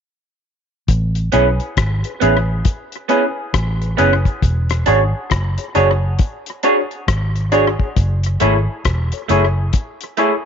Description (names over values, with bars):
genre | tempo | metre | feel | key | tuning
lovers rock reggae | 68 BPM | 4/4 | swing 62% on 16ths | A major | A4 = 440 Hz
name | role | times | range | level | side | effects
vintage muted fingered electric bass | bass | 0.9-9.7 s | E1 to B1 | -17 LUFS | equal | none
cloth-damped thuddy drum kit | drums | 0.9-10.4 s | hi-hat, kick drum, rim click | -20 LUFS | left 2 dB | tape echo
barky tine electric piano | accompaniment | 1.3-10.3 s | C#4 to C#5 | -21 LUFS | left 11 dB | phaser
electric guitar through a small old amp | stabs | 1.3-10.3 s | A3 to C#5 | -19 LUFS | right 12 dB | lush chorus
room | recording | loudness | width
moderate spring reverb, RT60 2.4 s | 1960s-style stereo with parts hard left and right, nothing above 7.6 kHz | -15 LUFS | side -7 dB against mid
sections
0.9-10.5 A section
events
none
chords
0.9 Amaj9; 4.4 E13 (rootless); 8.0 F#m9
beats
| 0.89 1.77 2.65 3.54 | 4.42 5.31 6.20 7.08 | 7.97 8.85 9.74